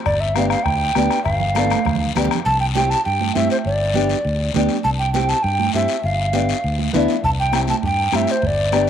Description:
latin, cumbia; 201 BPM; 4/4; straight; C major; A4 = 440 Hz
mellow hollow tenor recorder; melody; 0.1-8.9 s; C5 to A5; -20 LUFS; right 1 dB
fingered electric bass; bass; 0.1-8.9 s; G1 to G2; -22 LUFS; equal
bombo; percussion; 0.1-2.5, 7.2-8.9 s; -26 LUFS; left 3 dB
congas; percussion; 0.1-8.9 s; -26 LUFS; right 12 dB
guiro; percussion; 0.1-8.9 s; -30 LUFS; left 12 dB
nylon-string guitar; accompaniment; 0.4-8.9 s; B3 to A4; -23 LUFS; left 2 dB
moderate spring reverb, RT60 2.6 s; 1960s-style stereo with parts hard left and right; -16 LUFS; side -9 dB against mid
0.0-2.5 A section; 2.5-8.9 B section
drum fill 1.6-2.5
0.1 G7; 2.5 C; 3.6 G; 4.8 C; 6.0 G7; 7.2 C
| 0.06 0.36 0.66 0.96 | 1.26 1.56 1.85 2.15 | 2.45 2.75 3.05 3.35 | 3.65 3.95 4.25 4.54 | 4.84 5.14 5.44 5.74 | 6.04 6.34 6.64 6.93 | 7.23 7.53 7.83 8.13 | 8.43 8.73

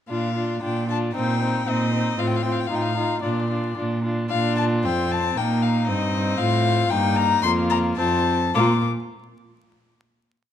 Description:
quick classical-period movement for string quartet; 104-118 BPM; 2/4; rubato; Bb major; A4 = 440 Hz
warm violin; melody; 0.1-8.9 s; D5 to D6; -25 LUFS; left 8 dB
dark violin; second line; 0.1-8.9 s; Eb4 to F4; -27 LUFS; left 3 dB
dark viola; accompaniment; 0.1-8.9 s; Bb3 to Eb4; -27 LUFS; right 1 dB
rich cello; bass; 0.1-8.9 s; F2 to Bb2; -24 LUFS; right 2 dB
moderate recital hall reverb, RT60 1.5 s; close, detailed microphones, vinyl crackle; -20 LUFS; side -10 dB against mid
0.1-4.3 A section; 4.3-8.5 A section; 8.5-9.6 final chord
slowing down 5.9-8.5
0.1 Bb; 1.2 Cm7/Bb; 2.2 F/A; 2.7 F7/A; 3.2 Bb; 5.4 Cm7/Bb; 6.4 F/A; 6.9 Eb/G; 7.4 Fsus4; 8.0 F; 8.5 Bb5
| 0.10 0.63 | 1.15 1.68 | 2.19 2.70 | 3.23 3.77 | 4.31 4.84 | 5.36 5.87 | 6.38 6.90 | 7.43 7.98 | 8.55

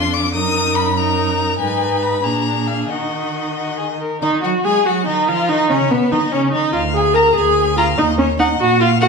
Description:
quick classical-period movement for string quartet; 95 BPM (dotted quarters); 6/8; rubato; Eb minor; A4 = 437 Hz
clear violin; melody; 0.0-9.1 s; B4 to Eb6; -22 LUFS; left 8 dB
rich violin; second line; 0.0-9.1 s; B3 to Bb5; -21 LUFS; left 3 dB
rich viola; accompaniment; 0.0-9.1 s; B3 to Bb4; -18 LUFS; right 1 dB
rich cello; bass; 0.0-9.1 s; D2 to Ab3; -22 LUFS; right 4 dB
wet recital hall reverb, RT60 1.3 s; small room ambience; -14 LUFS; side -4 dB against mid
0.0-4.2 A section; 4.2-9.1 B section
0.3 Ebm/Gb; 1.6 Abm; 2.2 Bb7; 2.9 Ebm; 5.5 Badd9; 6.7 Bb7/D; 8.0 Ebm
| 0.35 0.97 | 1.60 2.25 | 2.90 3.57 | 4.22 4.86 | 5.50 6.12 | 6.75 7.37 | 7.99 8.61

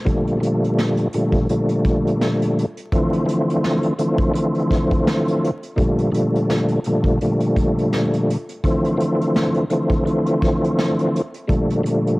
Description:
hip hop, boom-bap hip-hop; 84 BPM; 4/4; swing 56% on 16ths; G minor; A4 = 442 Hz
tonewheel organ; accompaniment; 0.0-12.2 s; Bb2 to C4; -18 LUFS; equal; chorus vibrato, fast rotary speaker, cassette tape, high-pass filter, low-pass filter
soft brush drum kit; drums; 0.1-12.2 s; hi-hat, kick drum, snare drum; -23 LUFS; equal; cassette tape
light reverb, small room reverb; home recording on cassette, vinyl crackle; -17 LUFS; side -21 dB against mid
0.1-12.2 A section
0.1 Gm9; 2.9 Dm9; 5.8 Gm9; 8.6 Dm9; 11.5 Gm9
| 0.06 0.78 1.49 2.21 | 2.92 3.63 4.35 5.06 | 5.78 6.49 7.21 7.92 | 8.63 9.35 10.06 10.78 | 11.49

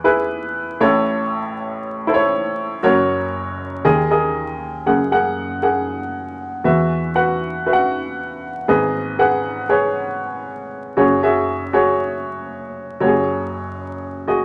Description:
pop; 118 BPM; 4/4; straight; A4 = 442 Hz
warm upright piano; solo; 0.0-14.4 s; F#1 to F#5; -20 LUFS; equal
moderate studio ambience, RT60 0.5 s; vinyl crackle, nothing above 10.8 kHz; -19 LUFS; mono
0.0-4.9 A section; 4.9-13.0 B section; 13.0-14.4 C section
0.0 E; 0.8 A; 2.8 F#; 3.9 D#sus4; 4.9 F#add9; 6.6 Esus2; 8.7 G#m; 11.0 F#sus2
0.30 | 0.81 1.31 1.82 2.33 | 2.83 3.34 3.85 4.36 | 4.87 5.38 5.88 6.39 | 6.90 7.41 7.92 8.43 | 8.94 9.45 9.95 10.46 | 10.97 11.48 11.99 12.50 | 13.00 13.51 14.02

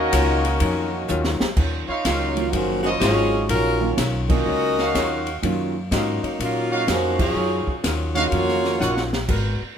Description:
jazz, big band swing; 124 BPM; 4/4; swing 66% on 8ths; Eb minor; A4 = 440 Hz
warm trumpet section; melody; 0.0-1.4 s; C#4 to Eb5; -27 LUFS; left 1 dB
muted trombone section; second line; 0.0-1.4 s; Bb3 to Gb4; -26 LUFS; left 1 dB
warm saxophone section; sustained chords; 0.0-1.6 s; Eb3 to Gb4; -31 LUFS; left 1 dB
upright bass; bass; 0.0-9.6 s; Gb1 to Bb2; -25 LUFS; equal
archtop guitar, miked and amplified; accompaniment; 0.1-9.6 s; Eb3 to Bb4; -29 LUFS; left 4 dB
open jazz drum kit; drums; 0.1-9.4 s; crash cymbal, hi-hat, kick drum, ride cymbal, snare drum, toms; -27 LUFS; equal
warm trumpet section; stabs; 1.9-9.0 s; Eb4 to Gb5; -26 LUFS; right 3 dB
clear saxophone section; melody; 2.1-9.1 s; Db3 to Eb5; -23 LUFS; left 1 dB
warm concert grand piano; accompaniment; 2.4-8.8 s; Db3 to F5; -28 LUFS; right 7 dB
light reverb; minimal, uncompressed stereo recording; -19 LUFS; side -8 dB against mid
0.0-1.6 A section; 1.6-9.8 B section
drum fill 1.1-1.6, 8.8-9.3; band accent 4.2, 7.1
0.0 Ebm9
0.13 0.61 1.09 | 1.57 2.05 2.54 3.02 | 3.50 3.98 4.46 4.95 | 5.43 5.91 6.39 6.88 | 7.36 7.84 8.32 8.80 | 9.29

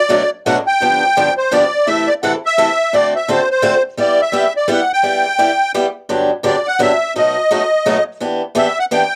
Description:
jazz; 170 BPM; 3/4; swing 60% on 8ths; G major; A4 = 440 Hz
musette accordion; melody; 0.0-9.2 s; C5 to G5; -16 LUFS; equal
picked swing-style acoustic guitar; accompaniment; 0.1-9.0 s; G2 to A4; -19 LUFS; equal
light reverb; dry, close 1970s-style studio recording; -15 LUFS; mono
0.0-6.1 A section; 6.1-9.2 B section
0.0 Bm7; 0.8 G7; 1.9 C6; 2.9 D7; 4.0 G6; 6.1 Gmaj7; 7.2 B7; 8.2 Em7
0.11 0.46 | 0.82 1.17 1.52 | 1.87 2.22 2.58 | 2.93 3.28 3.63 | 3.98 4.33 4.69 | 5.04 5.39 5.74 | 6.09 6.45 6.80 | 7.15 7.50 7.86 | 8.21 8.56 8.91

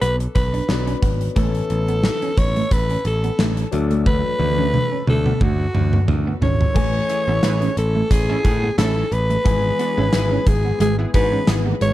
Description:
1980s-style pop; 89 BPM; 4/4; swing 55% on 16ths; A4 = 440 Hz
raspy alto saxophone; melody; 0.0-11.9 s; F#4 to C#5; -23 LUFS; equal; tape echo
clear concert grand piano; accompaniment; 0.0-11.9 s; E3 to G#5; -28 LUFS; left 7 dB
clean electric guitar; riff; 0.0-11.9 s; G#3 to D4; -27 LUFS; right 4 dB; lush chorus, tape echo
modern bright picked electric bass; bass; 0.0-11.9 s; G#1 to A2; -21 LUFS; equal
gated 80s drum kit; drums; 0.0-11.9 s; crash cymbal, hi-hat, kick drum, snare drum, toms; -20 LUFS; equal
funky polysynth comp; stabs; 7.1-11.7 s; B3 to B4; -29 LUFS; right 2 dB; chorus
little or no reverb; -16 LUFS; side -14 dB against mid
0.0-6.8 A section; 6.8-11.9 B section
drum fill 4.1-6.8
0.0 Bm; 1.4 Aadd9; 3.7 D; 6.8 Amaj7; 9.5 E/G#
0.02 0.69 | 1.36 2.04 2.71 3.39 | 4.06 4.74 5.41 6.08 | 6.76 7.43 8.11 8.78 | 9.46 10.13 10.80 11.48

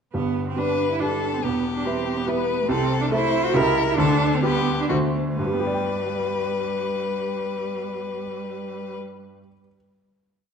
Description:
quick classical-period movement for piano trio; 121-144 BPM; 3/4; rubato; G major; A4 = 439 Hz
rich cello; second line; 0.1-9.0 s; G3 to F#4; -26 LUFS; right 5 dB
clear baby grand piano; accompaniment; 0.1-9.7 s; E1 to G5; -24 LUFS; equal
rich violin; melody; 0.6-9.0 s; F#4 to C5; -26 LUFS; left 7 dB
wet recital hall reverb, RT60 1.6 s; dark, warm production; -21 LUFS; side -6 dB against mid
0.1-5.4 A section; 5.4-8.2 final chord
slowing down 2.1-5.4
0.1 G; 1.4 Em; 2.7 Am/C; 3.6 C#dim7; 4.0 G/D; 4.9 D7; 5.4 G
| 0.14 0.58 1.01 | 1.44 1.87 2.29 | 2.71 3.12 3.55 | 3.99 4.44 4.90 | 5.39 5.86 6.33 | 6.79 7.26 7.74

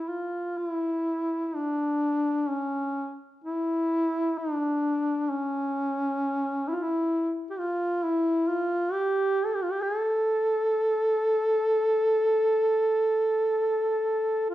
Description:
caucasian folk, Caucasian lament; 65 BPM; 4/4; uneven beats, rubato; A4 = 440 Hz
mellow duduk; solo; 0.0-14.5 s; C#4 to A4; -24 LUFS; equal; slapback echo
moderate recital hall reverb, RT60 1.4 s; dark, warm production; -24 LUFS; side -14 dB against mid
0.6-14.5 A section
| 0.57 1.53 2.48 3.43 | 4.36 5.28 6.19 7.11 | 8.01 8.90 9.81 10.71 | 11.62 12.54 13.49 14.50

